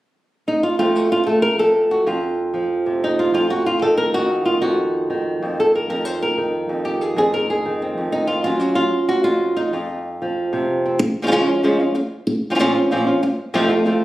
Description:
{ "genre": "flamenco", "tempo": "188 BPM", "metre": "4/4", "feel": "straight", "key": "F phrygian dominant", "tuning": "A4 = 440 Hz", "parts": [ { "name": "flamenco guitar", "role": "solo", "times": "0.5-14.0 s", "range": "F2 to C5", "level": "-17 LUFS", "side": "equal", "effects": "none" } ], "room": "moderate stone room reverb, RT60 1.2 s", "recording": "recorded on a phone in the room, studio reverb", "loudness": "-17 LUFS", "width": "side -16 dB against mid", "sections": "0.8-11.0 A section; 11.0-14.0 B section", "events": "none", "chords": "0.0 N.C.; 0.8 F; 3.3 Ebm/F; 5.9 Ab/F; 8.5 Gb5; 9.7 F5; 11.0 Db; 12.3 Bbmadd9", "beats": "0.15 0.47 | 0.79 1.11 1.43 1.75 | 2.07 2.38 2.70 3.02 | 3.34 3.66 3.98 4.30 | 4.62 4.94 5.26 5.58 | 5.90 6.22 6.54 6.86 | 7.17 7.49 7.81 8.13 | 8.45 8.77 9.09 9.41 | 9.73 10.05 10.37 10.69 | 11.00 11.32 11.64 11.96 | 12.28 12.60 12.91 13.23 | 13.55 13.87" }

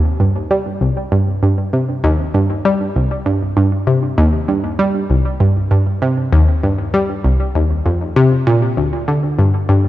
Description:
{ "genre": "ambient", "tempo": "98 BPM", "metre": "4/4", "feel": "straight", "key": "C minor", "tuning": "A4 = 440 Hz", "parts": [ { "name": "analog pluck", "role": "solo", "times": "0.0-9.9 s", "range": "C2 to G3", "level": "-13 LUFS", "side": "equal", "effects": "chorus, analog delay" } ], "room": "light reverb", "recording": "cassette tape", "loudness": "-13 LUFS", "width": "side -14 dB against mid", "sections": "0.0-9.9 A section", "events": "none", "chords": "none", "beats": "0.51 | 1.12 1.73 2.35 2.96 | 3.57 4.18 4.79 5.41 | 6.02 6.63 7.24 7.86 | 8.47 9.08 9.69" }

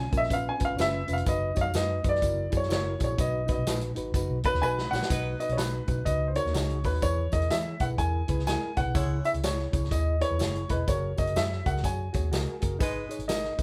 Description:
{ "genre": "uptempo 1960s-style soul", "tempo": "125 BPM", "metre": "4/4", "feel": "swing 62% on 8ths", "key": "B major", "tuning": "A4 = 442 Hz", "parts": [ { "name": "dark baby grand piano", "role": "melody", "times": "0.0-13.6 s", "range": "B4 to G#5", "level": "-32 LUFS", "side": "equal", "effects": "none" }, { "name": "mellow reed electric piano", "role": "accompaniment", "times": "0.0-13.6 s", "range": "G#2 to D#5", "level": "-37 LUFS", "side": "equal", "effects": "fast tremolo" }, { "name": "vintage muted fingered electric bass", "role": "bass", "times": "0.0-13.6 s", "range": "E1 to E3", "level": "-33 LUFS", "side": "equal", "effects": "none" }, { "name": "vintage drum kit", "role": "drums", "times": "0.1-13.6 s", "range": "hi-hat, kick drum, snare drum", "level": "-33 LUFS", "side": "equal", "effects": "none" }, { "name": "tambourine", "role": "percussion", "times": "0.1-13.6 s", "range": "none", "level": "-49 LUFS", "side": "equal", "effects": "none" }, { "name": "warm saxophone section", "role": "second line", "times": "5.1-5.5, 8.9-9.3, 12.8-13.2 s", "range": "F#3 to C#5", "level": "-38 LUFS", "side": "equal", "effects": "none" } ], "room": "light reverb", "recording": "band playing live in one room", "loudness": "-28 LUFS", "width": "mono", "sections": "0.0-5.1 A section; 5.1-13.6 B section", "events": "grand piano solo 0.0-5.1; drum fill 4.6-5.1", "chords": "0.0 C#7; 1.3 B/F#; 2.2 F#7; 3.2 B; 7.0 E; 9.0 C#m; 10.9 F#add9; 12.8 G#m", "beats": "0.31 0.79 | 1.27 1.75 2.23 2.71 | 3.19 3.67 4.14 4.62 | 5.11 5.58 6.07 6.55 | 7.03 7.51 7.99 8.47 | 8.95 9.43 9.92 10.40 | 10.88 11.36 11.84 12.32 | 12.81 13.29" }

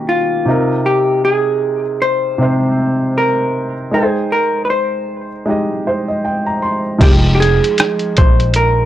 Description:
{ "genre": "lo-fi hip hop", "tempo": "78 BPM", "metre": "4/4", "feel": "swing 58% on 16ths", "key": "F minor", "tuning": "A4 = 440 Hz", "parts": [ { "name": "vintage hollow-body jazz guitar", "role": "melody", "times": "0.0-8.9 s", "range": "Eb4 to C5", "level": "-16 LUFS", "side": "equal", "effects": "none" }, { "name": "warm upright piano", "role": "accompaniment", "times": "0.0-8.9 s", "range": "C3 to C6", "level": "-17 LUFS", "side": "equal", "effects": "none" }, { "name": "upright bass", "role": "bass", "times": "7.0-8.9 s", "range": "F1 to Bb1", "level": "-14 LUFS", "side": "equal", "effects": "tube saturation" }, { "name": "lo-fi sampler-style drum kit", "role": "drums", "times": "7.0-8.8 s", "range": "crash cymbal, hi-hat, kick drum, rim click", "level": "-13 LUFS", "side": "equal", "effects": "none" } ], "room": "light reverb", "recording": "dry, gritty hardware recording, faint mains hum", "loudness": "-12 LUFS", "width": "side -12 dB against mid", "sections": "0.0-7.0 A section; 7.0-8.9 B section", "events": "none", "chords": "0.5 Cm7; 3.9 Abmaj7; 7.0 Fm9", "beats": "0.09 | 0.85 1.62 2.39 3.16 | 3.93 4.70 5.47 6.24 | 7.01 7.78 8.55" }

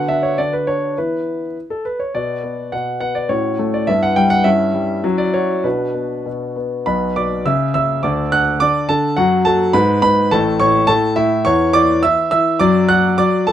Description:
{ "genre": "classical-period piano sonatina", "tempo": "104 BPM", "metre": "2/4", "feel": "rubato", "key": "B minor", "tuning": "A4 = 440 Hz", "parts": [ { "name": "warm concert grand piano", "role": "solo", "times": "0.0-13.5 s", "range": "A1 to F#6", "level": "-14 LUFS", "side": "equal", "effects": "none" } ], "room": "light reverb", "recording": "none", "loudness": "-14 LUFS", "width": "side -10 dB against mid", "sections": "0.0-6.9 A section; 6.9-13.5 B section", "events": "none", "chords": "0.0 Bm/D; 1.0 E5; 2.1 Bm; 3.3 F#m/A; 3.9 Em/G; 4.5 C#dim/G; 5.0 F#5; 5.6 Bm; 7.5 C#m; 8.0 D; 9.2 F#m; 9.7 G#m; 10.3 A; 11.5 C#m/E; 12.6 D/F#", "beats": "0.38 | 0.97 1.56 | 2.14 2.73 | 3.31 3.88 | 4.46 5.04 | 5.65 6.26 | 6.87 7.46 | 8.03 8.61 | 9.18 9.75 | 10.31 10.88 | 11.46 12.03 | 12.60 13.18" }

